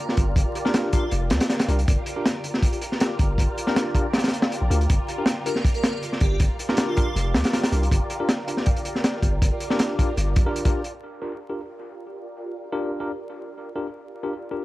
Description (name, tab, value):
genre	drum and bass, jungle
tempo	159 BPM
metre	4/4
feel	straight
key	G minor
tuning	A4 = 439 Hz
part	airy dreamy lead	melody	0.0-1.1, 5.5-7.3 s	F4 to Bb4	-34 LUFS	right 1 dB	chorus, dub echo
part	soft string machine	sustained chords	0.0-14.6 s	F4 to D5	-32 LUFS	equal	phaser, ensemble chorus
part	crunchy breakbeat drum kit	drums	0.1-10.9 s	hi-hat, kick drum, snare drum	-22 LUFS	equal	none
part	long sustained 808-style bass	bass	0.2-10.5 s	F1 to D2	-23 LUFS	equal	none
part	tine electric piano	stabs	0.7-14.6 s	D4 to Bb4	-30 LUFS	left 1 dB	medium stereo tremolo, dub echo
room	little or no reverb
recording	dry, gritty hardware recording, vinyl crackle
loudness	-21 LUFS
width	side -17 dB against mid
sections	0.0-10.9 A section; 10.9-14.6 B section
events	drop 0.0-10.9; filter sweep on string machine 10.9-14.6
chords	0.0 Gm7